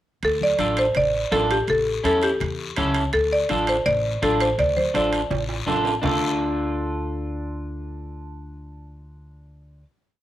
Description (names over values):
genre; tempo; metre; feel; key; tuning
latin, cumbia; 166 BPM; 4/4; straight; D harmonic minor; A4 = 439 Hz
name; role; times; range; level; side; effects
buzzing marimba with medium hard mallets; melody; 0.2-5.6 s; G4 to D5; -21 LUFS; equal; plate reverb
upright bass; bass; 0.2-9.8 s; A1 to E2; -30 LUFS; equal; none
guiro; percussion; 0.2-6.1 s; none; -35 LUFS; left 7 dB; none
timbales; percussion; 0.2-6.1 s; none; -32 LUFS; right 8 dB; none
congas; percussion; 0.4-6.1 s; none; -32 LUFS; left 5 dB; none
electric guitar at the edge of break-up; accompaniment; 0.6-9.8 s; C#4 to A4; -25 LUFS; equal; wide subtle chorus, cassette tape
room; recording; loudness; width
moderate small room reverb, RT60 0.5 s; home recording on cassette; -20 LUFS; side -13 dB against mid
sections
0.2-6.0 A section; 6.0-8.9 final chord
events
drum fill 5.3-6.0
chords
0.2 Dm; 1.7 A7; 3.1 Dm